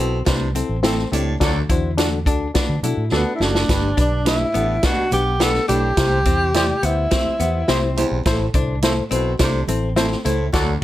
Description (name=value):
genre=uptempo 1960s-style soul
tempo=105 BPM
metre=4/4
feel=straight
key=unclear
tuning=A4 = 440 Hz
part: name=reed electric piano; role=accompaniment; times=0.0-10.8 s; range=G2 to D5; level=-25 LUFS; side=left 4 dB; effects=harmonic tremolo
part: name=archtop guitar, miked and amplified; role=riff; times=0.0-10.5 s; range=B3 to E4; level=-27 LUFS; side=left 6 dB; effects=none
part: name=clear baritone saxophone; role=riff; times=0.0-10.8 s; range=D2 to C3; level=-28 LUFS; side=right 6 dB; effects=none
part: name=vintage muted fingered electric bass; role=bass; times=0.0-10.8 s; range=F#1 to D3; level=-22 LUFS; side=equal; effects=none
part: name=vintage drum kit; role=drums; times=0.3-10.7 s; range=hi-hat, kick drum, snare drum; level=-21 LUFS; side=right 1 dB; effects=none
part: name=congas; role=percussion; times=0.6-10.7 s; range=none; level=-32 LUFS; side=right 6 dB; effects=none
part: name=semi-hollow electric guitar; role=stabs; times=0.8-10.1 s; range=C4 to C5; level=-26 LUFS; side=right 7 dB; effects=none
part: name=warm horn section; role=second line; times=1.4-1.6, 10.5-10.7 s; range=F#3 to A4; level=-27 LUFS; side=right 2 dB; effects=none
part: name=breathy tenor saxophone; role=melody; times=3.2-8.0 s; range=B3 to A4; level=-21 LUFS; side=equal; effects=slapback echo
room=light reverb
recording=none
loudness=-17 LUFS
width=side -14 dB against mid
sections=0.0-10.8 A section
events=band accent 1.4-3.7, 10.5; drum fill 3.1-3.7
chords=0.0 Am; 1.4 D; 3.7 G; 6.0 C; 8.3 Am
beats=0.27 0.84 | 1.41 1.98 2.55 3.12 | 3.69 4.26 4.83 5.40 | 5.97 6.54 7.11 7.68 | 8.26 8.83 9.40 9.97 | 10.54